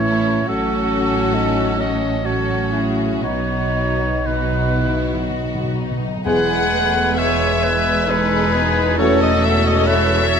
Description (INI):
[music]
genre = classical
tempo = 58-70 BPM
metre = 3/4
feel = rubato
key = E major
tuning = A4 = 444 Hz
[part]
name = warm symphonic violin section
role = melody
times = 0.0-10.4 s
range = F#4 to F#5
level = -27 LUFS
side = left 5 dB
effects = none
[part]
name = clear oboe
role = second line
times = 0.0-10.4 s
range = G#4 to D#5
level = -24 LUFS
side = right 1 dB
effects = none
[part]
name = rich symphonic violin section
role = second line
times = 0.0-10.4 s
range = D#4 to C#5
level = -26 LUFS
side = left 3 dB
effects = none
[part]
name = mellow bassoon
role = accompaniment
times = 0.0-10.4 s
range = F#3 to F#4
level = -26 LUFS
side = right 2 dB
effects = none
[part]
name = rich symphonic viola section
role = accompaniment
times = 0.0-10.4 s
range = F#3 to D#4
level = -25 LUFS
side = equal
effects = none
[part]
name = mellow French horn section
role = sustained chords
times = 0.0-9.3 s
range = E3 to G#4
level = -24 LUFS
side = left 7 dB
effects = none
[part]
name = rich studio double bass section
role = bass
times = 0.0-10.4 s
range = E1 to B1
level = -24 LUFS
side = right 2 dB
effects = none
[part]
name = rich symphonic cello section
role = bass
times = 0.0-10.4 s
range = E2 to B2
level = -25 LUFS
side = right 3 dB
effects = none
[part]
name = timpani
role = percussion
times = 3.2-7.6 s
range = E2 to B2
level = -29 LUFS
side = equal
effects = none
[part]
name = silver concert flute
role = second line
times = 6.2-10.4 s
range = G#6 to A6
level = -26 LUFS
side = left 3 dB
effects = none
[part]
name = bright clarinet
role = second line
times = 6.3-10.4 s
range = B4 to F#5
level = -22 LUFS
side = left 2 dB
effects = none
[part]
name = mellow trombone section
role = sustained chords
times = 6.3-9.3 s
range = E3 to A3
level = -24 LUFS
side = right 7 dB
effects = none
[sound]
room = moderate scoring stage reverb, RT60 1.6 s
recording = close, detailed microphones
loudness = -16 LUFS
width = side -7 dB against mid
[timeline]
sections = 0.0-6.3 A section; 6.3-10.4 B section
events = timpani fill 3.2-6.3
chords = 0.5 F#m/A; 3.2 B; 6.3 E; 9.0 F#m7/E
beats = | 0.48 1.35 2.25 | 3.24 4.25 5.26 | 6.25 7.17 8.08 | 8.99 9.88